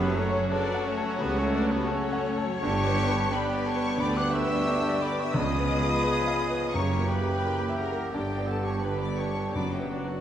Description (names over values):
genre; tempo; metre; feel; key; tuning
classical, romantic movement for piano and orchestra; 87 BPM; 4/4; rubato; unclear; A4 = 440 Hz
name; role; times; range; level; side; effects
clear grand piano; melody; 0.0-10.2 s; C#2 to F#5; -30 LUFS; left 1 dB; none
rich symphonic violin section; melody; 0.0-10.2 s; B4 to F#6; -36 LUFS; left 4 dB; none
mellow hollow silver concert flute; second line; 0.0-10.2 s; G4 to D6; -35 LUFS; left 1 dB; none
rich symphonic violin section; second line; 0.0-10.2 s; B3 to F#5; -39 LUFS; left 3 dB; none
warm cor anglais; second line; 0.0-10.2 s; B3 to F#5; -37 LUFS; right 2 dB; none
rich symphonic viola section; accompaniment; 0.0-10.2 s; C#3 to C#4; -35 LUFS; right 2 dB; none
mellow French horn section; sustained chords; 0.0-10.2 s; A3 to E#4; -36 LUFS; left 4 dB; none
bright trumpet section; stabs; 0.0-10.1 s; F#4 to G#4; -35 LUFS; right 2 dB; none
dark studio double bass section; bass; 0.0-10.2 s; F#1 to D2; -35 LUFS; right 2 dB; none
mellow tuba; bass; 0.0-10.2 s; F#1 to D2; -36 LUFS; right 2 dB; none
rich symphonic cello section; bass; 0.0-10.2 s; C#2 to G2; -36 LUFS; right 2 dB; none
timpani; percussion; 6.7-10.2 s; F#2; -35 LUFS; equal; none
room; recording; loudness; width
wet scoring stage reverb, RT60 1.6 s; none; -24 LUFS; side -10 dB against mid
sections
0.0-10.2 A section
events
none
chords
0.0 F#m; 2.6 G; 5.4 C#7; 6.7 F#7b9; 8.1 G; 9.5 Bm/F#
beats
0.51 1.20 1.88 | 2.62 3.32 3.99 4.67 | 5.36 6.05 6.74 7.43 | 8.12 8.83 9.55